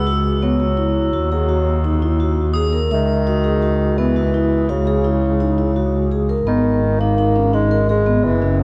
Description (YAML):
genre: contemporary instrumental, chamber music in an uneven meter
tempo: 168 BPM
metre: 5/4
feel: straight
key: C# dorian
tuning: A4 = 440 Hz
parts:
  - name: mellow bassoon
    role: melody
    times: 0.0-8.6 s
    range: C#3 to B3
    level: -24 LUFS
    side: equal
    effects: diffuse ambient delay
  - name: clear double bass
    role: bass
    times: 0.0-8.6 s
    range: F#1 to D#2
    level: -20 LUFS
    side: equal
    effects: none
  - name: crotales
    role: texture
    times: 0.0-3.1 s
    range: D#6 to E6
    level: -32 LUFS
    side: equal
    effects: none
  - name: vibraphone with soft mallets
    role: arpeggios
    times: 0.1-8.6 s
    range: B3 to E5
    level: -23 LUFS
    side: equal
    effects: none
room: moderate lush hall reverb, RT60 3.0 s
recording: dreamy mix soaked in reverb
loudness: -17 LUFS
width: mono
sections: 0.0-6.5 A section; 6.5-8.6 B section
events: none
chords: 0.0 C#m; 1.1 D#m; 2.9 C#madd9; 4.7 C#m; 6.5 G#m